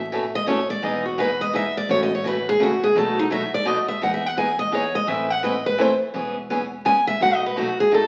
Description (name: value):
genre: acoustic string swing (jazz manouche)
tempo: 169 BPM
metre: 3/4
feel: swing 61% on 8ths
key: E major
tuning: A4 = 440 Hz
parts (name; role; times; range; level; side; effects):
- picked steel-string acoustic guitar; melody; 0.0-8.1 s; D#4 to G#5; -23 LUFS; equal; none
- upright bass; bass; 0.0-8.1 s; E1 to E2; -40 LUFS; equal; none
- picked steel-string acoustic guitar; accompaniment; 0.1-8.0 s; B2 to B4; -27 LUFS; equal; none
room: wet large studio reverb, RT60 1.1 s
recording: very old 78 rpm record, vinyl crackle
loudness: -22 LUFS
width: mono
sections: 0.0-4.0 A section; 4.0-8.1 A section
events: steel-string acoustic guitar solo 0.0-8.1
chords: 0.0 Aadd9; 0.8 Emaj7; 1.9 A6; 3.0 B7; 4.0 Emaj7; 5.1 Amadd9; 6.1 E6; 7.2 B7